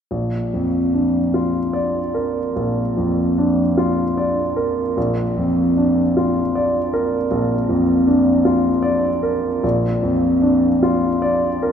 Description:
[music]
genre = classical, romantic nocturne for solo piano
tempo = 47-53 BPM (dotted quarters)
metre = 12/8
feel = rubato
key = Bb major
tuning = A4 = 437 Hz
[part]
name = warm grand piano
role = solo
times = 0.1-11.7 s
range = Bb1 to D5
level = -16 LUFS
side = equal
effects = none
[sound]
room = wet cathedral reverb, RT60 6.2 s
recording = in a vast, echoing space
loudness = -16 LUFS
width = side -8 dB against mid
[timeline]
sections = 0.1-11.7 A section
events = none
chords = 0.1 Bb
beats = | 0.10 1.34 2.56 3.77 | 4.96 6.16 7.30 8.45 | 9.63 10.84

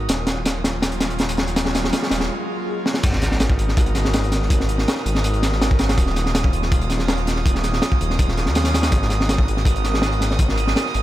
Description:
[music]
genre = drum and bass, jungle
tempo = 163 BPM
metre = 4/4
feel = straight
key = G# minor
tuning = A4 = 440 Hz
[part]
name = airy breathy pad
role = sustained chords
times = 0.0-11.0 s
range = F#3 to A#4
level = -29 LUFS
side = right 1 dB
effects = chorus
[part]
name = detuned saw bass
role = bass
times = 0.0-11.0 s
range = D#1 to D#2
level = -22 LUFS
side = equal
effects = tube saturation
[part]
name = riser, swell and sub drop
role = sound effects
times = 0.0-4.5 s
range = none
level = -31 LUFS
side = equal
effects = none
[part]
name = drifting glass-harmonics texture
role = texture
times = 0.0-11.0 s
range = D#6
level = -29 LUFS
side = right 4 dB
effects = chorus, built-in reverb
[part]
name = crunchy breakbeat drum kit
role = drums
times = 0.1-11.0 s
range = crash cymbal, hi-hat, kick drum, snare drum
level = -20 LUFS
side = equal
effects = none
[sound]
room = little or no reverb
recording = none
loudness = -17 LUFS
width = side -14 dB against mid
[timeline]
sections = 0.0-3.0 A section; 3.0-11.0 B section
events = build-up 0.0-3.0; drum fill 0.0-2.3, 2.9; filter sweep on analog synth pad 0.0-3.0; break 2.3-3.0; swell 2.3-3.0; drop 3.0-11.0; impact 3.0-4.5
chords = 0.1 D#m7; 3.0 G#m7; 6.0 D#m7; 8.9 G#m7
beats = | 0.09 0.46 0.83 1.19 | 1.56 1.93 2.30 2.67 | 3.03 3.40 3.77 4.14 | 4.51 4.88 5.24 5.61 | 5.98 6.35 6.71 7.08 | 7.45 7.82 8.19 8.56 | 8.92 9.29 9.66 10.03 | 10.40 10.76

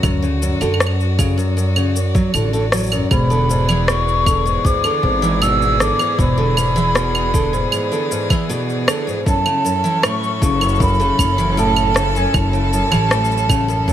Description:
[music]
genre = folktronica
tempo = 78 BPM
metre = 4/4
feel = straight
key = unclear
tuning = A4 = 440 Hz
[part]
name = warm string quartet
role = sustained chords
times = 0.0-13.9 s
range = E3 to D5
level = -24 LUFS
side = equal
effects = none
[part]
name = picked steel-string acoustic guitar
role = arpeggios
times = 0.0-13.9 s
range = F#2 to F#3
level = -21 LUFS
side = equal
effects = tape echo
[part]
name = upright bass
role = bass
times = 0.0-13.9 s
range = E1 to F#2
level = -19 LUFS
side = equal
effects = none
[part]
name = electronic claves, cabasa and rim click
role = drums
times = 0.0-13.9 s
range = none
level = -21 LUFS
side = right 1 dB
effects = studio ambience
[part]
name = electronic kick drum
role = drums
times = 0.0-13.9 s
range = none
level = -18 LUFS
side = equal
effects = studio ambience
[part]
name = baroque flute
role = melody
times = 3.1-13.9 s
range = G#5 to E6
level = -20 LUFS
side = right 1 dB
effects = tape echo
[sound]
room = light reverb, studio reverb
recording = none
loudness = -14 LUFS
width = side -11 dB against mid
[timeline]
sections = 0.0-13.9 A section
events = none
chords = 0.0 Dmaj7; 3.1 E7; 9.3 F#m7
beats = | 0.03 0.80 1.57 2.34 | 3.11 3.88 4.65 5.42 | 6.19 6.96 7.72 8.49 | 9.26 10.03 10.80 11.57 | 12.34 13.11 13.88

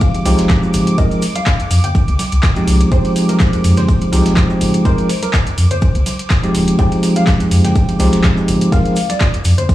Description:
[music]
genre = deep house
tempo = 124 BPM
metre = 4/4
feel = swing 54% on 16ths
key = F dorian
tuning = A4 = 440 Hz
[part]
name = soft round pluck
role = melody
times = 0.0-9.7 s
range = Bb4 to G5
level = -25 LUFS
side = left 1 dB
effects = lush chorus, analog delay
[part]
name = bell-like tine electric piano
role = stabs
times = 0.0-9.0 s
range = F3 to Bb4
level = -15 LUFS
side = equal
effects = sidechain pumping, low-pass filter
[part]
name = dusty soul sampler-style drum kit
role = drums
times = 0.0-9.7 s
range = hi-hat, ride cymbal, snare drum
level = -31 LUFS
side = right 3 dB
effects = high-pass filter on cymbals, high-pass filter on snare, high-pass filter on hats
[part]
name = electronic kick drum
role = drums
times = 0.0-9.7 s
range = none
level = -15 LUFS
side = equal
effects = overdrive
[part]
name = cabasa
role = percussion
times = 0.0-9.7 s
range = none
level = -34 LUFS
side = left 1 dB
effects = none
[part]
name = soft string machine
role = texture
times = 0.0-9.7 s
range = D6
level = -30 LUFS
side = right 2 dB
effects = ensemble chorus, sidechain pumping
[part]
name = deep house drum kit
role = drums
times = 0.1-9.7 s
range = handclaps, hi-hat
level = -23 LUFS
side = equal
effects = overdrive
[part]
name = congas and bongos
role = percussion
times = 0.1-9.7 s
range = none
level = -24 LUFS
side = equal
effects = none
[part]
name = sub bass with octave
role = bass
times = 0.3-9.7 s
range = Eb1 to F2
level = -15 LUFS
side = equal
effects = tube saturation, sidechain pumping
[sound]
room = light reverb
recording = dry, gritty hardware recording, small room reverb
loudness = -11 LUFS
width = side -14 dB against mid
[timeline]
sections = 0.0-9.7 A section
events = none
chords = 0.0 Fm9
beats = 0.01 0.50 | 0.98 1.47 1.95 2.43 | 2.92 3.40 3.88 4.37 | 4.85 5.34 5.82 6.30 | 6.79 7.27 7.76 8.24 | 8.72 9.21 9.69

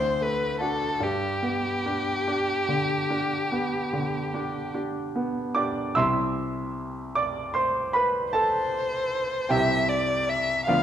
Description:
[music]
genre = classical, romantic duo for violin and grand piano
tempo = 47-52 BPM (dotted quarters)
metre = 12/8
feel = rubato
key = G major, C major from 6.0 s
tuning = A4 = 439 Hz
[part]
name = rich violin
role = melody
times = 0.0-10.8 s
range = G4 to F5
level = -26 LUFS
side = left 2 dB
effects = none
[part]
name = clear grand piano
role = accompaniment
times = 0.0-10.8 s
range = C2 to E6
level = -26 LUFS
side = right 1 dB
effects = none
[sound]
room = moderate recital hall reverb, RT60 1.5 s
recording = none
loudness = -24 LUFS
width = side -10 dB against mid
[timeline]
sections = 0.0-6.0 A section; 6.0-10.8 B section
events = none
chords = 0.0 D; 1.0 G; 6.0 C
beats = | 1.01 2.27 3.51 4.74 | 5.96 7.16 8.33 9.50 | 10.68

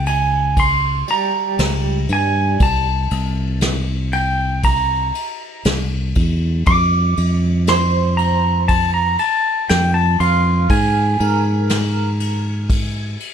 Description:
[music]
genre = acoustic folk-pop ballad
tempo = 59 BPM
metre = 4/4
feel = straight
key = unclear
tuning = A4 = 440 Hz
[part]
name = pedal steel guitar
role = melody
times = 0.0-13.3 s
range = G5 to D6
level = -18 LUFS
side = right 1 dB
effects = none
[part]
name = fingered electric bass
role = bass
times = 0.0-13.2 s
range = C2 to Ab2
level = -18 LUFS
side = equal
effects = none
[part]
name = soft brush drum kit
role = drums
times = 0.1-13.3 s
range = kick drum, ride cymbal, snare drum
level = -23 LUFS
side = equal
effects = none
[part]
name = electric guitar through a small old amp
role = arpeggios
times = 1.1-12.9 s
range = G3 to F5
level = -24 LUFS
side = right 4 dB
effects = tremolo
[sound]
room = light reverb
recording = dark, warm production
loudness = -15 LUFS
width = side -8 dB against mid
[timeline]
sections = 0.0-13.3 A section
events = none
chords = 0.0 Db5; 2.6 C7(no3); 6.7 F5; 10.7 Absus2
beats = 0.57 1.58 | 2.60 3.62 4.63 5.66 | 6.67 7.68 8.69 9.70 | 10.70 11.70 12.69

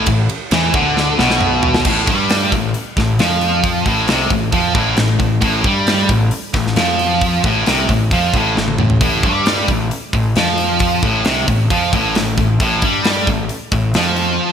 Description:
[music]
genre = heavy metal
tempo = 134 BPM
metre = 4/4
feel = straight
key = A minor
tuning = A4 = 440 Hz
[part]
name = high-gain distorted guitar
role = riff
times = 0.0-14.5 s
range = A2 to G3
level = -15 LUFS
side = equal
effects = distortion
[part]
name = fuzz picked electric bass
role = bass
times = 0.0-14.4 s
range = A1 to G2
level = -22 LUFS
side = equal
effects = overdrive
[part]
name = tight metal drum kit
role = drums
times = 0.1-14.3 s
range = crash cymbal, hi-hat, kick drum, ride cymbal, snare drum, toms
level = -19 LUFS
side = equal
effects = gated reverb
[sound]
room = light reverb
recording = bright 1980s-style digital production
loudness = -13 LUFS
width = side -8 dB against mid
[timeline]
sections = 0.0-1.9 A section; 1.9-14.5 B section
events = drum fill 1.0-1.9, 8.6-9.0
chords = 0.0 A5; 1.9 N.C.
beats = | 0.08 0.52 0.97 1.42 | 1.86 2.31 2.75 3.20 | 3.65 4.10 4.54 4.99 | 5.44 5.89 6.33 6.78 | 7.23 7.68 8.13 8.57 | 9.02 9.47 9.92 10.37 | 10.82 11.26 11.71 12.16 | 12.61 13.06 13.51 13.96 | 14.41

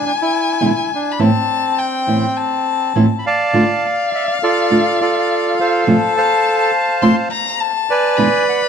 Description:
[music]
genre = tango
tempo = 103 BPM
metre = 4/4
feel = rubato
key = A minor, D minor from 3.5 s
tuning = A4 = 440 Hz
[part]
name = bandoneon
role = melody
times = 0.0-8.7 s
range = C4 to B5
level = -17 LUFS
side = right 2 dB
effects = analog delay
[part]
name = warm violin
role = second line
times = 0.0-8.7 s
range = F5 to C6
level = -19 LUFS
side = left 8 dB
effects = none
[part]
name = nylon-string guitar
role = accompaniment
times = 0.6-8.3 s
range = E2 to F4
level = -16 LUFS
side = right 2 dB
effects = none
[sound]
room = moderate studio reverb, RT60 0.8 s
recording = dark, warm production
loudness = -13 LUFS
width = side -7 dB against mid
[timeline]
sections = 0.0-3.5 A section; 3.5-8.7 B section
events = none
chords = 0.0 E7; 1.2 Amadd9; 3.5 Dm; 5.9 F; 8.2 E7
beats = 0.04 0.62 | 1.20 1.78 2.37 2.95 | 3.54 4.12 4.70 5.29 | 5.87 6.45 7.03 7.60 | 8.18

